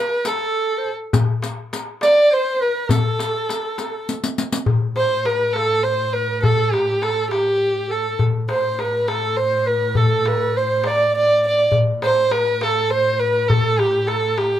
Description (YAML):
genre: Arabic maqam ensemble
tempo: 68 BPM (dotted quarters)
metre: 6/8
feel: straight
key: A maqam bayati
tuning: A4 = 442 Hz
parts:
  - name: dark violin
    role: melody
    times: 0.0-14.6 s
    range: G4 to D5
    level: -19 LUFS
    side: equal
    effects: none
  - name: mellow clarinet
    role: second line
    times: 0.0-14.6 s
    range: G4 to D5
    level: -23 LUFS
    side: right 4 dB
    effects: none
  - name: riq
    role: percussion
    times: 0.2-4.7 s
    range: none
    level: -25 LUFS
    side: left 2 dB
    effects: none
  - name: darbuka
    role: percussion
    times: 0.3-14.5 s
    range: none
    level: -21 LUFS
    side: left 3 dB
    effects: none
  - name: bright double bass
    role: drone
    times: 4.7-14.6 s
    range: A2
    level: -28 LUFS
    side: right 2 dB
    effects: none
room: moderate small room reverb, RT60 0.5 s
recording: close, detailed microphones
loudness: -17 LUFS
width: side -11 dB against mid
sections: 0.0-4.7 A section; 4.7-14.6 B section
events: drum fill 4.1-4.7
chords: none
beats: 0.25 | 1.13 2.01 | 2.90 3.78 | 4.66 5.55 | 6.43 7.32 | 8.20 9.08 | 9.97 10.85 | 11.73 12.62 | 13.50 14.38